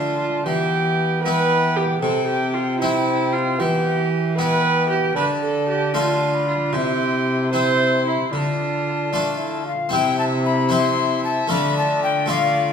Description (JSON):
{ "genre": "classical, renaissance-style consort dance", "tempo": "76 BPM (dotted quarters)", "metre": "6/8", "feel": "straight", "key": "unclear", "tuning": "A4 = 436 Hz", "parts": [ { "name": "mellow tenor recorder", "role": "melody", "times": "0.0-12.7 s", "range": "F5 to C6", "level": "-25 LUFS", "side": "left 4 dB", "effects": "none" }, { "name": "rich viola", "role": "second line", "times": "0.0-12.7 s", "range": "E4 to E5", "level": "-23 LUFS", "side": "right 4 dB", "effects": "none" }, { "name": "clear bassoon", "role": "accompaniment", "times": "0.0-12.7 s", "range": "B3 to F4", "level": "-26 LUFS", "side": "left 2 dB", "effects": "none" }, { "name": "harpsichord", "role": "accompaniment", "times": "0.0-12.7 s", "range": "C3 to D5", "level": "-26 LUFS", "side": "left 2 dB", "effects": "none" }, { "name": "rich cello", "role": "bass", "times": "0.0-12.7 s", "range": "C3 to E3", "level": "-24 LUFS", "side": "right 1 dB", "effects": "none" } ], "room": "wet recital hall reverb, RT60 1.5 s", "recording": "none", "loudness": "-18 LUFS", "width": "side -7 dB against mid", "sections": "0.0-9.9 A section; 9.9-12.7 A section", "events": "none", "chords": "0.5 Em; 2.0 C; 3.6 Em; 5.2 Dm; 6.7 C; 8.3 Dm; 9.9 C; 11.5 Dm", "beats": "| 0.46 1.24 | 2.03 2.81 | 3.59 4.37 | 5.16 5.95 | 6.73 7.53 | 8.33 9.13 | 9.93 10.72 | 11.51 12.30" }